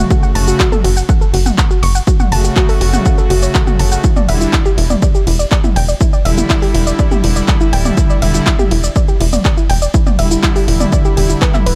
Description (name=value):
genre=melodic techno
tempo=122 BPM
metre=4/4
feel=straight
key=unclear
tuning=A4 = 439 Hz
part: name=soft round pluck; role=arpeggios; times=0.0-11.7 s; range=E4 to C#6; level=-22 LUFS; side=equal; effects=chorus, sidechain pumping, tape echo
part: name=brassy analog pad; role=stabs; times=0.0-11.8 s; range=C#3 to F#4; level=-22 LUFS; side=equal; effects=chorus, sidechain pumping, tape echo
part: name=tight sequencer bass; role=bass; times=0.0-11.8 s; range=D1 to F#1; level=-17 LUFS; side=equal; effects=sidechain pumping
part: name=electronic kick drum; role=drums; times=0.1-11.5 s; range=none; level=-16 LUFS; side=equal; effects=overdrive
part: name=techno drum kit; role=drums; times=0.1-11.8 s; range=handclaps, hi-hat, ride cymbal, shaker, toms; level=-22 LUFS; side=equal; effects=none
room=digital ambience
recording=none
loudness=-13 LUFS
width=mono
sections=0.0-11.8 A section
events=none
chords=0.0 F#m; 4.0 Em7